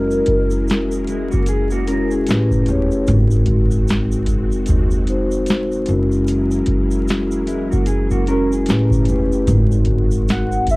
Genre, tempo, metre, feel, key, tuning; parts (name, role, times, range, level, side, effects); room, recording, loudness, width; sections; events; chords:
lo-fi hip hop; 75 BPM; 4/4; swing 59% on 16ths; A4 = 439 Hz
warbly nostalgic lead; melody; 0.0-1.1, 10.3-10.8 s; A#4 to F#5; -21 LUFS; equal; chorus, low-pass filter, cassette tape, analog delay
vibraphone with soft mallets; accompaniment; 0.0-10.8 s; G#3 to C#5; -20 LUFS; left 1 dB; cassette tape, low-pass filter, plate reverb
string machine, cellos; sustained chords; 0.0-10.8 s; F#3 to A#4; -31 LUFS; equal; ensemble chorus, low-pass filter, cassette tape
upright bass; bass; 0.0-10.8 s; E1 to D#2; -18 LUFS; equal
tube shaker; percussion; 0.1-10.8 s; -40 LUFS; right 3 dB
booming analog drum machine; drums; 0.3-10.8 s; hi-hat, kick drum, snare drum; -20 LUFS; equal; cassette tape
mellow electric guitar; second line; 1.1-2.5, 7.5-8.9 s; G#3 to A#4; -24 LUFS; right 2 dB; phaser, low-pass filter, cassette tape, analog delay, plate reverb
light reverb; home recording on cassette, vinyl crackle; -15 LUFS; side -23 dB against mid
0.0-10.8 A section
0.0 F#9; 2.3 A9; 3.1 G#9; 5.9 F#9; 8.7 A9; 9.5 G#9